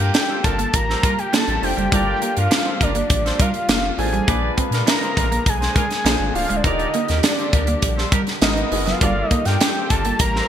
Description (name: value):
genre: polished 1980s jazz-funk pop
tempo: 102 BPM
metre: 4/4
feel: straight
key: G minor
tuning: A4 = 440 Hz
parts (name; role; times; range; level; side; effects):
- fat analog lead; melody; 0.0-10.5 s; D5 to Bb5; -23 LUFS; equal; digital delay
- clear horn section; second line; 0.0-10.5 s; D4 to D5; -30 LUFS; right 2 dB; none
- warm grand piano; accompaniment; 0.0-10.5 s; D3 to C5; -29 LUFS; left 1 dB; wide subtle chorus
- warm studio string section; sustained chords; 0.0-10.5 s; D3 to Cb5; -31 LUFS; left 1 dB; none
- warm sub bass; bass; 0.0-10.4 s; C#1 to Bb2; -24 LUFS; equal; none
- electric guitar at the edge of break-up; riff; 0.1-10.2 s; Gb3 to Eb4; -27 LUFS; right 3 dB; ensemble chorus
- tight funk drum kit; drums; 0.1-10.4 s; hi-hat, kick drum, snare drum; -20 LUFS; equal; gated reverb
room: light reverb, small room ambience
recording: bright 1980s-style digital production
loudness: -16 LUFS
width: side -9 dB against mid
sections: 0.0-10.5 A section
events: none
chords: 0.0 Gm9; 4.3 Bb7b9; 6.1 Bb9; 6.7 Ebmaj7; 8.4 Abm9; 9.0 Gm9